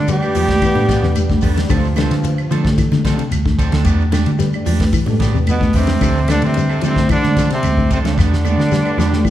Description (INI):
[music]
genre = afrobeat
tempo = 111 BPM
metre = 4/4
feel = straight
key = D dorian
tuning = A4 = 440 Hz
[part]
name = brilliant trombone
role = melody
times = 0.0-1.4, 5.5-9.3 s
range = B3 to G4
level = -20 LUFS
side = equal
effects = none
[part]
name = edgy tenor saxophone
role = second line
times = 0.0-1.4, 5.5-9.3 s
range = B2 to G3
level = -25 LUFS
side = right 2 dB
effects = none
[part]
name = hollow-body short-scale fingered electric bass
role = bass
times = 0.0-9.2 s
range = D2 to D3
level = -18 LUFS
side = equal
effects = none
[part]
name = reed electric piano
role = accompaniment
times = 0.1-9.3 s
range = A3 to D5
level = -26 LUFS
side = left 3 dB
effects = spring reverb
[part]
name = clean electric guitar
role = arpeggios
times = 0.1-9.3 s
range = C3 to G3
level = -24 LUFS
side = left 4 dB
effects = none
[part]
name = damped 70s drum kit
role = drums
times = 0.1-9.3 s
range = hi-hat, kick drum, ride cymbal, snare drum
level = -20 LUFS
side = equal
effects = none
[part]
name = shekere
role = percussion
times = 0.1-9.3 s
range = none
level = -27 LUFS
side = left 4 dB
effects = none
[part]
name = electric guitar at the edge of break-up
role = stabs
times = 0.2-9.2 s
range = F3 to A4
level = -27 LUFS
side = right 5 dB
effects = none
[part]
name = claves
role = percussion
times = 0.2-9.3 s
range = none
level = -36 LUFS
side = right 7 dB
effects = none
[part]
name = congas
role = percussion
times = 0.3-9.3 s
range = none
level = -22 LUFS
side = right 1 dB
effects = none
[part]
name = muted trombone section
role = second line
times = 0.6-2.8, 8.7-9.3 s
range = F3 to B3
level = -29 LUFS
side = left 1 dB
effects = none
[sound]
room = moderate large studio reverb, RT60 1.4 s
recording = band playing live in one room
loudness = -13 LUFS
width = side -12 dB against mid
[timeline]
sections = 0.0-9.3 A section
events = drum fill 8.2-9.3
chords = 0.0 Em7; 1.7 Dm7; 3.9 Em7; 6.0 Dm7; 8.2 Em7